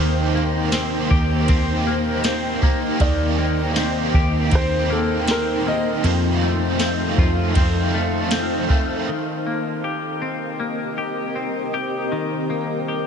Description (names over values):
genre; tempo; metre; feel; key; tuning
dream pop; 79 BPM; 4/4; straight; Eb lydian; A4 = 440 Hz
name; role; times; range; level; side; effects
felt-muted upright piano; melody; 0.0-6.4 s; A4 to Eb5; -29 LUFS; equal; digital delay, shimmer reverb
biting overdriven guitar; accompaniment; 0.0-9.1 s; F2 to G4; -27 LUFS; right 5 dB; tremolo, analog chorus, shimmer reverb
granular cloud pad; sustained chords; 0.0-13.1 s; Bb3 to G5; -25 LUFS; equal; built-in reverb, shimmer reverb
semi-hollow electric guitar; arpeggios; 0.0-13.1 s; F2 to G4; -25 LUFS; left 5 dB; wide subtle chorus, digital delay, shimmer reverb
vintage muted picked electric bass; bass; 0.0-9.0 s; Eb2 to F2; -23 LUFS; equal; none
soft vintage rhythm box; drums; 0.7-8.9 s; kick drum, ride cymbal, snare drum, tambourine; -21 LUFS; equal; none
room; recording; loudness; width
moderate lush hall reverb, RT60 3.2 s; none; -18 LUFS; side -7 dB against mid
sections
0.0-9.1 A section; 9.1-13.1 B section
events
none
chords
0.0 Eb6; 6.0 F7; 9.1 Eb6